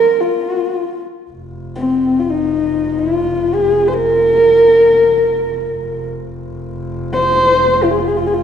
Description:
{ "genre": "mongolian traditional, Mongolian folk", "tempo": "108 BPM", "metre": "4/4", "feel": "straight", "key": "F yu mode", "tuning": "A4 = 435 Hz", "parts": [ { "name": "dark horsehead fiddle", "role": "melody", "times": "0.0-8.4 s", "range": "C4 to C5", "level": "-12 LUFS", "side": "equal", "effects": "none" }, { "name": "clear double bass", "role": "drone", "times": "1.3-8.4 s", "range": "F1", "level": "-25 LUFS", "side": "left 1 dB", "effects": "none" } ], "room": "wet recital hall reverb, RT60 1.8 s", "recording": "recorded in a church or concert hall, nothing above 11.0 kHz", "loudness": "-12 LUFS", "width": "side -8 dB against mid", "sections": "0.0-1.3 A section; 1.3-8.4 B section", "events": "none", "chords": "none" }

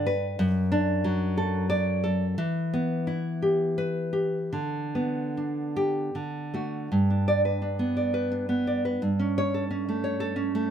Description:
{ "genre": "romantic piece for solo classical guitar", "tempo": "73-94 BPM", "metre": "3/4", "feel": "rubato", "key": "G major", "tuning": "A4 = 443 Hz", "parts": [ { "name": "nylon-string guitar", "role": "solo", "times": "0.0-10.7 s", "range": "F#2 to D5", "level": "-24 LUFS", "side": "equal", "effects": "none" } ], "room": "moderate studio reverb, RT60 0.9 s", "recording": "none", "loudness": "-24 LUFS", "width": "side -8 dB against mid", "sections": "0.0-6.9 A section; 6.9-10.7 B section", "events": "none", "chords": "0.4 D/F#; 2.4 Em; 4.5 G/D; 6.1 D; 6.9 G; 9.0 A7/G" }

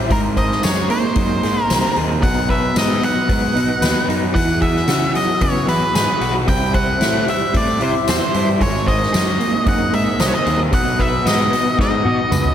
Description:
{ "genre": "psychedelic rock", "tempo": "113 BPM", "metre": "4/4", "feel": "straight", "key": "unclear", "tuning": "A4 = 441 Hz", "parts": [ { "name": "tonewheel organ", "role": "sustained chords", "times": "0.0-12.5 s", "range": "B3 to C5", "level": "-28 LUFS", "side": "right 3 dB", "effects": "chorus vibrato, slow rotary speaker" }, { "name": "electric guitar through a small old amp", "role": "riff", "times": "0.0-12.5 s", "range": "B2 to C5", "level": "-21 LUFS", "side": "left 1 dB", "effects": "tremolo" }, { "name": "fuzz picked electric bass", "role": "bass", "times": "0.0-12.5 s", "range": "G#1 to E3", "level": "-21 LUFS", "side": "equal", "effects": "overdrive" }, { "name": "octave-fuzz lead guitar", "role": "melody", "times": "0.1-12.5 s", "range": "A#4 to G5", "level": "-20 LUFS", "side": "equal", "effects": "distortion, tape echo" }, { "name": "soft-mallet drum kit", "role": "drums", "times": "0.1-12.5 s", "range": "hi-hat, kick drum, snare drum, toms", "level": "-21 LUFS", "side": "equal", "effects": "none" }, { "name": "tambourine", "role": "percussion", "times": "0.6-12.4 s", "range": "none", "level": "-31 LUFS", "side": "left 4 dB", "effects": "none" } ], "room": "moderate cathedral reverb, RT60 6.3 s", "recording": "dreamy mix soaked in reverb", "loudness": "-15 LUFS", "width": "side -10 dB against mid", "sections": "0.0-12.5 A section", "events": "drum fill 11.8-12.5", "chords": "0.1 G#add9; 2.2 B; 4.4 Eadd9; 6.5 C; 8.6 G#add9; 10.7 B" }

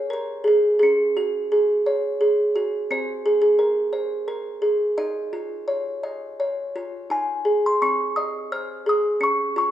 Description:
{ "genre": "children's music, lullaby", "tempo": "58 BPM (dotted quarters)", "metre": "6/8", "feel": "rubato", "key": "unclear", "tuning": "A4 = 441 Hz", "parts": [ { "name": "music box", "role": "solo", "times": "0.0-9.7 s", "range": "C4 to F6", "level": "-20 LUFS", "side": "right 1 dB", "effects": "none" } ], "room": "wet scoring stage reverb, RT60 1.8 s", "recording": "minimal, uncompressed stereo recording", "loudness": "-20 LUFS", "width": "side -11 dB against mid", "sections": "0.0-7.1 A section; 7.1-9.7 B section", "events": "none", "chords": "0.0 Bbm7; 0.8 Gbsus2; 2.9 Abadd9; 5.0 Dbadd9; 7.1 Ab; 9.2 Db" }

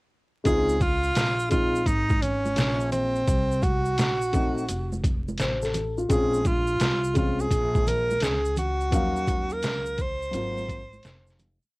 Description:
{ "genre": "hip hop, jazz-hop", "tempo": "85 BPM", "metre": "4/4", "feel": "swing 66% on 16ths", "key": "Db major", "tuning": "A4 = 442 Hz", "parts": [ { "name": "dark concert grand piano", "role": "accompaniment", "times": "0.4-10.8 s", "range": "F3 to F5", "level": "-28 LUFS", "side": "left 2 dB", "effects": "cassette tape" }, { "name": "breathy tenor saxophone", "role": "melody", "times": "0.5-11.4 s", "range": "C4 to C5", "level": "-26 LUFS", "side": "right 1 dB", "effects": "none" }, { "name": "upright bass", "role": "bass", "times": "0.5-11.7 s", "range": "F1 to Eb2", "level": "-30 LUFS", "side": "equal", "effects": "none" }, { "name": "trip hop sampler-style drum kit", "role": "drums", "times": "0.5-11.6 s", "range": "hi-hat, kick drum, snare drum", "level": "-26 LUFS", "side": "equal", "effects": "cassette tape" }, { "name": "tube shaker and congas", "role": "percussion", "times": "0.5-11.7 s", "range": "none", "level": "-38 LUFS", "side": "right 2 dB", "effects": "none" } ], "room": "moderate booth ambience, RT60 0.2 s", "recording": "home recording on cassette, vinyl crackle", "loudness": "-22 LUFS", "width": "side -23 dB against mid", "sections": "0.5-11.8 head", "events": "fade-out 8.9-11.8", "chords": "0.5 Dbmaj9; 3.3 Cm7b5; 4.7 F; 6.1 Bbm7; 8.9 Ebm9; 10.3 Ab13" }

